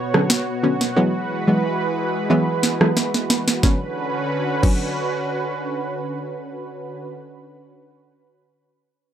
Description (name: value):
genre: dancehall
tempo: 90 BPM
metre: 4/4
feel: straight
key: B dorian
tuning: A4 = 441 Hz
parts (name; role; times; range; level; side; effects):
- lush unison pad; sustained chords; 0.0-7.1 s; B2 to C#5; -24 LUFS; right 1 dB; chorus, sidechain pumping
- analog pluck; accompaniment; 0.1-7.8 s; D3 to C#4; -19 LUFS; equal; chorus
- island pop drum kit; drums; 0.1-4.8 s; crash cymbal, kick drum, rim click, snare drum; -19 LUFS; right 1 dB; overdrive
room: little or no reverb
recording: dry, gritty hardware recording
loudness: -18 LUFS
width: side -10 dB against mid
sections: 0.0-3.6 A section; 3.6-6.3 B section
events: drum fill 3.0-3.6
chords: 0.0 Bmadd9; 1.0 Eadd9; 3.6 Bmadd9